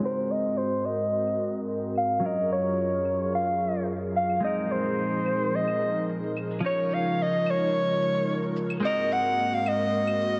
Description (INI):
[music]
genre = sunset chillout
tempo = 109 BPM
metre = 4/4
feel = straight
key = unclear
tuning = A4 = 440 Hz
[part]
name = clean electric guitar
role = accompaniment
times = 0.0-10.4 s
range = F3 to Db5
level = -34 LUFS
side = equal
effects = digital delay
[part]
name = airy breathy pad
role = sustained chords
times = 0.0-10.4 s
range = Gb2 to Bb4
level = -34 LUFS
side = equal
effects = chorus
[part]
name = shaker and claves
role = drums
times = 0.0-10.4 s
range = none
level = -45 LUFS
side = equal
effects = low-pass filter on perc, small room ambience
[part]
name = mellow soprano saxophone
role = melody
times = 0.1-10.4 s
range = C5 to Gb5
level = -29 LUFS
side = equal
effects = tape echo
[sound]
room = moderate lush hall reverb, RT60 1.8 s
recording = heavily compressed radio sound, low-pass filter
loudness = -27 LUFS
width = mono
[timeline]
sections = 0.0-10.4 A section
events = filter sweep on analog synth pad 0.0-10.4; filter sweep 0.0-10.4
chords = 0.0 Ab9; 2.2 Gbmaj7; 4.4 Bb9sus4; 6.6 Dbadd9; 8.8 Ab9